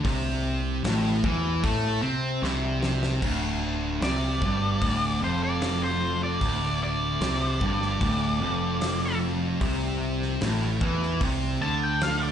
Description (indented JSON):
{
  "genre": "blues rock power trio and southern rock",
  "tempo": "75 BPM",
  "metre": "4/4",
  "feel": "straight",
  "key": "unclear",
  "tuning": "A4 = 441 Hz",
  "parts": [
    { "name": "thick fuzz guitar", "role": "riff", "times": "0.0-12.3 s", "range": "D2 to C4", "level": "-27 LUFS", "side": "equal", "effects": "distortion" },
    { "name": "growling picked electric bass", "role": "bass", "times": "0.0-12.3 s", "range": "D1 to C3", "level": "-29 LUFS", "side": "equal", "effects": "overdrive" },
    { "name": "big rock drum kit", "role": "drums", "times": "0.0-12.2 s", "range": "crash cymbal, hi-hat, kick drum, snare drum", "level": "-32 LUFS", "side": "equal", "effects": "none" },
    { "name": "octave-fuzz lead guitar", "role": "melody", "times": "4.0-12.3 s", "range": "C5 to A5", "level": "-29 LUFS", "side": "equal", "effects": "distortion, slapback echo" }
  ],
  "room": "small room ambience",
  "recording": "live gig heard through the venue's PA, club reverb, nothing above 10.6 kHz",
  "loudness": "-24 LUFS",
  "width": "side -9 dB against mid",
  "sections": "0.0-3.2 A section; 3.2-12.3 B section",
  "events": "drum fill 2.4-3.2; lead electric guitar solo 3.2-12.3",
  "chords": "0.0 Am; 3.2 Dm7; 9.6 C5"
}